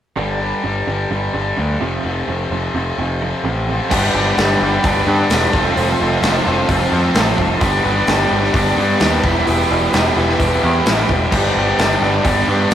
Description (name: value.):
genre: quiet-loud alternative rock.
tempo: 130 BPM.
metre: 4/4.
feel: straight.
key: G mixolydian.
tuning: A4 = 443 Hz.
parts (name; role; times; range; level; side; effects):
twangy electric guitar; arpeggios; 0.2-3.9 s; F2 to G3; -27 LUFS; right 4 dB; tremolo.
overdriven electric guitar; riff; 0.2-12.7 s; F2 to A4; -19 LUFS; left 2 dB; spring reverb.
growling picked electric bass; bass; 0.2-12.7 s; E1 to G2; -20 LUFS; equal; overdrive.
tonewheel organ; sustained chords; 3.9-12.7 s; G4 to C6; -29 LUFS; right 1 dB; none.
fuzz guitar; riff; 3.9-12.7 s; E3 to B4; -24 LUFS; right 5 dB; distortion.
high-gain distorted guitar; riff; 3.9-12.7 s; G2 to G4; -20 LUFS; equal; distortion.
big rock drum kit; drums; 3.9-12.7 s; crash cymbal, hi-hat, kick drum, snare drum; -19 LUFS; equal; none.
room: moderate studio reverb, RT60 0.6 s.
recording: rough rehearsal-room recording.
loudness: -14 LUFS.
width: side -10 dB against mid.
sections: 0.2-3.9 A section; 3.9-12.7 B section.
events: none.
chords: 0.2 G5; 1.8 F; 3.9 G; 5.5 F; 7.6 G; 9.2 Em; 11.3 G.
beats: | 0.17 0.64 1.11 1.58 | 2.04 2.51 2.98 3.45 | 3.91 4.38 4.84 5.30 | 5.77 6.23 6.69 7.16 | 7.62 8.08 8.54 9.01 | 9.47 9.93 10.39 10.86 | 11.32 11.78 12.25 12.71.